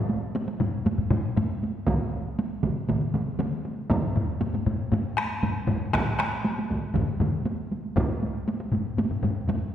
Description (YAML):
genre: japanese traditional, taiko drum ensemble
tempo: 118 BPM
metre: 4/4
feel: straight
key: none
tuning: none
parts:
  - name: taiko ensemble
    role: percussion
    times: 0.1-9.7 s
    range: none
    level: -29 LUFS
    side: right 2 dB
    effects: none
  - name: taiko ensemble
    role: percussion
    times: 0.6-9.6 s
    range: none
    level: -28 LUFS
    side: left 2 dB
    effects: none
  - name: taiko ensemble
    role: percussion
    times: 1.9-7.3 s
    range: none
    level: -30 LUFS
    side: right 1 dB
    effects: none
  - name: taiko ensemble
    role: percussion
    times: 1.9-8.1 s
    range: none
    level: -31 LUFS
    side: right 1 dB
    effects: none
room: wet concert hall reverb, RT60 1.9 s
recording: heard from further back in the room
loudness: -24 LUFS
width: side -10 dB against mid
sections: 0.0-9.7 A section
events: none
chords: none